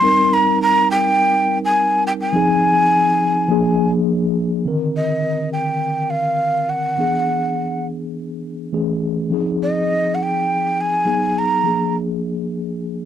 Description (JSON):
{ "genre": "soul", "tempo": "103 BPM", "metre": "4/4", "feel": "straight", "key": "C minor", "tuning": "A4 = 441 Hz", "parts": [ { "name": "breathy mellow jazz flute", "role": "melody", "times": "0.0-12.0 s", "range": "Eb5 to C6", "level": "-17 LUFS", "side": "right 1 dB", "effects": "none" }, { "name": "mellow tine electric piano", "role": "accompaniment", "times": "0.0-13.1 s", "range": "D3 to Bb4", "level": "-20 LUFS", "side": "left 2 dB", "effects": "medium stereo tremolo" } ], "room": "light reverb", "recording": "dry, close 1970s-style studio recording", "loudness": "-16 LUFS", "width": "side -10 dB against mid", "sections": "0.0-4.7 A section; 4.7-13.1 B section", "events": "none", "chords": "0.0 Cm7; 2.3 Fm7; 3.5 Bb7; 4.7 Cm9; 7.0 E7; 8.7 Amaj7; 9.3 Fm7; 11.1 Abm7; 11.6 Bb7", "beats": "| 0.03 0.61 1.19 1.76 | 2.34 2.92 3.50 4.08 | 4.66 5.24 5.82 6.40 | 6.98 7.57 8.15 8.73 | 9.31 9.90 10.48 11.06 | 11.64 12.23 12.81" }